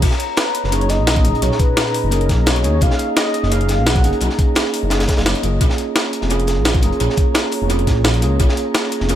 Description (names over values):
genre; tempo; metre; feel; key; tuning
liquid drum and bass; 172 BPM; 4/4; straight; B lydian; A4 = 440 Hz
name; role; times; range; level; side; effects
glassy FM pad; sustained chords; 0.0-9.2 s; G#4 to A#5; -25 LUFS; equal; ensemble chorus, built-in reverb, phaser, sidechain pumping
dark detuned saw bass; bass; 0.0-9.2 s; E#1 to D#2; -18 LUFS; equal; none
breakbeat sampler-style drum kit; drums; 0.0-9.2 s; crash cymbal, hi-hat, snare drum; -21 LUFS; equal; dub echo
crunchy breakbeat drum kit; drums; 0.0-9.2 s; hi-hat, snare drum; -26 LUFS; equal; high-pass filter on hats, high-pass filter on snare, high-pass filter on room
electronic kick drum; drums; 0.0-8.5 s; none; -17 LUFS; equal; none
warm velvety synth lead; melody; 0.4-4.2 s; A#4 to F#5; -24 LUFS; equal; chorus, analog delay
bell-like tine electric piano; accompaniment; 0.7-9.2 s; A#2 to G#4; -23 LUFS; right 2 dB; dub echo
room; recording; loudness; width
light reverb; echo-heavy mix; -14 LUFS; side -11 dB against mid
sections
0.0-9.2 A section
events
none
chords
0.0 Bmaj13; 5.6 A#m7